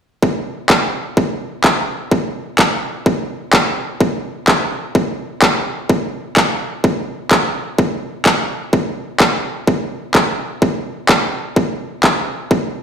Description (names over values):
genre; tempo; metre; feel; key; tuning
EDM, festival progressive house; 127 BPM; 4/4; straight; none; none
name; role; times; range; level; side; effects
electronic kick drum; drums; 0.2-12.6 s; none; -16 LUFS; equal; overdrive, high-pass filter on kick
electronic handclaps; drums; 0.7-12.1 s; none; -16 LUFS; equal; none
room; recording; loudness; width
moderate digital room reverb, RT60 0.9 s, digital ambience; played on a big sound system in a bare room, large studio reverb; -15 LUFS; side -7 dB against mid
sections
0.2-12.8 A section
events
none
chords
none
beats
| 0.23 0.70 1.17 1.64 | 2.12 2.59 3.06 3.53 | 4.00 4.48 4.95 5.42 | 5.89 6.37 6.84 7.31 | 7.79 8.26 8.73 9.20 | 9.68 10.15 10.62 11.09 | 11.56 12.04 12.51